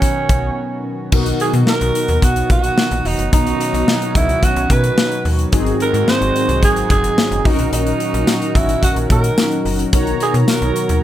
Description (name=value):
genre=1980s-style pop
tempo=109 BPM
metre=4/4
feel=straight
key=unclear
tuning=A4 = 440 Hz
part: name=breathy alto saxophone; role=melody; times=0.0-11.0 s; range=C#4 to B#4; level=-20 LUFS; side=right 3 dB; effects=digital delay
part: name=tine electric piano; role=accompaniment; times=0.0-11.0 s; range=G#2 to A#5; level=-22 LUFS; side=left 2 dB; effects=phaser
part: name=chorused pulse-width pad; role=sustained chords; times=0.0-11.0 s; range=D#3 to F#4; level=-25 LUFS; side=equal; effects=none
part: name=modern studio drum kit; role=drums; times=0.0-11.0 s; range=crash cymbal, hi-hat, kick drum, snare drum, tambourine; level=-18 LUFS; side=equal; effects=none
part: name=slap-like FM bass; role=bass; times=0.3-11.0 s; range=E1 to B2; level=-19 LUFS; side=equal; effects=none
part: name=mellow synth brass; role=stabs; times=1.1-11.0 s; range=B3 to A#5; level=-26 LUFS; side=equal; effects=chorus
room=moderate studio reverb, RT60 0.5 s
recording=none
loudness=-14 LUFS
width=side -12 dB against mid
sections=0.0-1.1 A section; 1.1-11.0 B section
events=break 0.6-1.1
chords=0.0 Badd9; 1.1 Bmaj7; 5.5 G#7; 7.5 D#m7; 9.9 Bmaj7